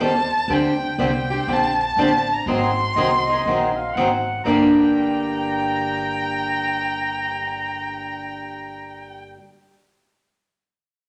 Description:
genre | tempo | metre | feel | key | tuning
acoustic string swing (jazz manouche) | 121 BPM | 4/4 | swing 64% on 8ths | G minor | A4 = 441 Hz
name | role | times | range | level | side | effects
warm violin | melody | 0.0-9.2 s | G5 to C6 | -26 LUFS | equal | none
picked swing-style acoustic guitar | accompaniment | 0.0-9.4 s | G2 to A4 | -24 LUFS | equal | none
upright bass | bass | 0.0-9.3 s | G1 to Eb2 | -34 LUFS | equal | none
clear clarinet | second line | 3.0-9.2 s | Eb5 to Bb5 | -29 LUFS | equal | none
room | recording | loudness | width
wet large studio reverb, RT60 1.2 s | none | -21 LUFS | mono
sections
0.0-4.5 A section; 4.5-8.4 B section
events
none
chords
0.5 D7sus4; 2.5 Ab7; 4.5 Gm

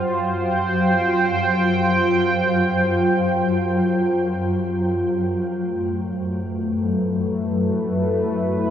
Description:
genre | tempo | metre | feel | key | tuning
dark ambient drone | free time | none | none | unclear | A4 = 441 Hz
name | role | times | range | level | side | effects
sweeping resonant pad | sustained chords | 0.0-8.7 s | A3 to G5 | -20 LUFS | right 1 dB | chorus, shimmer reverb
swarming drone | drone | 0.0-8.7 s | F#2 to F#3 | -22 LUFS | left 1 dB | built-in reverb
room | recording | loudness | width
wet huge ambient reverb, RT60 8.7 s | in a vast, echoing space, cassette tape, nothing above 7.6 kHz | -18 LUFS | side -9 dB against mid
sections
0.0-5.6 A section; 5.6-8.7 B section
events
filter sweep on synth drone 0.0-5.6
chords
0.0 F5; 5.6 A5

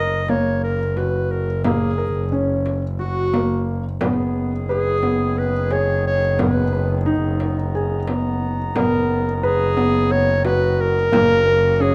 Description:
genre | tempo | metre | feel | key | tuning
contemporary instrumental, chamber music in an uneven meter | 177 BPM (eighths) | 7/8 | straight | unclear | A4 = 439 Hz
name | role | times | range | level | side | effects
dark clarinet | melody | 0.0-11.9 s | F#4 to D#5 | -23 LUFS | equal | none
dark grand piano | arpeggios | 0.0-11.9 s | A#3 to B4 | -25 LUFS | equal | none
rich double bass | bass | 0.0-11.9 s | F#1 | -25 LUFS | equal | none
frame drum | percussion | 0.3-11.9 s | none | -30 LUFS | equal | none
clear woodwind section | sustained chords | 4.0-11.9 s | D#3 to A#5 | -33 LUFS | equal | none
room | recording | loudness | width
light reverb | close, detailed microphones | -20 LUFS | mono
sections
0.0-11.9 A section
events
none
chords
0.0 F#; 4.0 B6/F#; 11.1 F#6

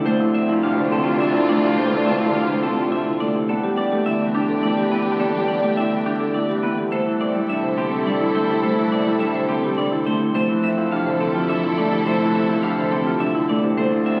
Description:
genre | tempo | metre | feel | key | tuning
classical, minimalist pattern music | 105 BPM | 3/4 | straight | F lydian | A4 = 440 Hz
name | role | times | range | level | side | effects
Celtic harp | accompaniment | 0.0-14.2 s | C3 to D4 | -25 LUFS | equal | none
marimba with medium hard mallets | arpeggios | 0.0-14.2 s | C4 to D5 | -25 LUFS | equal | none
semi-hollow electric guitar | melody | 0.1-14.2 s | G4 to F5 | -31 LUFS | equal | none
alto flute | second line | 0.1-14.2 s | F4 to A4 | -34 LUFS | equal | none
rich symphonic violin section | sustained chords | 0.1-14.2 s | D4 to A4 | -29 LUFS | equal | none
rich cello | bass | 0.1-14.2 s | C2 to F2 | -31 LUFS | equal | none
room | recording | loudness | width
wet scoring stage reverb, RT60 2.0 s | very old 78 rpm record, vinyl crackle | -20 LUFS | mono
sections
0.0-14.2 A section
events
none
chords
0.1 Dm7; 3.5 Em7; 6.9 C6; 10.3 Fmaj7

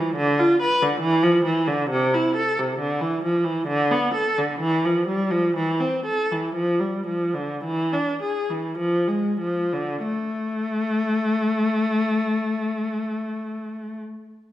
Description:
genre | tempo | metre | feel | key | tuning
classical, baroque-style suite movement for unaccompanied viola | 46-73 BPM | 4/4 | rubato | A minor | A4 = 436 Hz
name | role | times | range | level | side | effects
rich viola | solo | 0.0-14.0 s | C3 to B4 | -21 LUFS | equal | none
room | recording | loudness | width
wet recital hall reverb, RT60 1.3 s | recorded in a church or concert hall | -20 LUFS | side -13 dB against mid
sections
0.0-10.0 A section; 10.0-14.5 B section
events
slowing down 0.2-10.0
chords
none

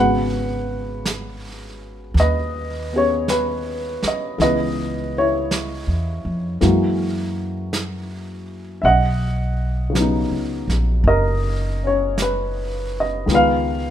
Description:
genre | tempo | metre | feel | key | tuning
jazz ballad | 54 BPM | 4/4 | swing 69% on 8ths | G# minor | A4 = 440 Hz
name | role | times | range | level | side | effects
dark baby grand piano | accompaniment | 0.0-13.9 s | C#3 to F#5 | -20 LUFS | left 1 dB | none
upright bass | bass | 0.0-13.9 s | F#1 to F#2 | -23 LUFS | equal | none
vintage brush drum kit | drums | 1.1-13.9 s | brushed snare drum, hi-hat, snare drum | -29 LUFS | right 2 dB | none
room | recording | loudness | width
little or no reverb | minimal, uncompressed stereo recording | -18 LUFS | side -10 dB against mid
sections
0.0-13.9 A section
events
none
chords
0.0 G#m7; 4.4 C#m9; 6.6 F#9; 8.8 Bmaj9; 13.3 C#9

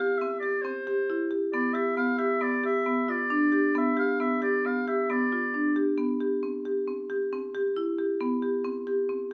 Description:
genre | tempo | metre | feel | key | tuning
contemporary instrumental, chamber music in an uneven meter | 135 BPM | 5/4 | straight | C major | A4 = 444 Hz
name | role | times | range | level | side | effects
warm oboe | melody | 0.0-5.8 s | C5 to F5 | -32 LUFS | equal | none
marimba with medium hard mallets | arpeggios | 0.0-9.3 s | B3 to G4 | -29 LUFS | equal | none
room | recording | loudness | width
wet studio reverb, RT60 0.6 s | heard from further back in the room, nothing above 10.5 kHz | -27 LUFS | mono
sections
0.0-9.3 A section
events
none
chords
0.0 C5; 1.5 G; 6.0 C5

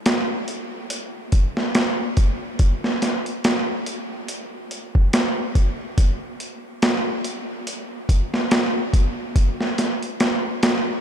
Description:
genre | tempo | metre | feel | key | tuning
trip hop | 71 BPM | 4/4 | swing 57% on 16ths | none | none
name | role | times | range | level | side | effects
boom bap sampler-style drum kit | drums | 0.1-10.9 s | hi-hat, kick drum, snare drum | -20 LUFS | equal | none
room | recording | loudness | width
light reverb | none | -20 LUFS | side -9 dB against mid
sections
0.0-11.0 A section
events
none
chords
none

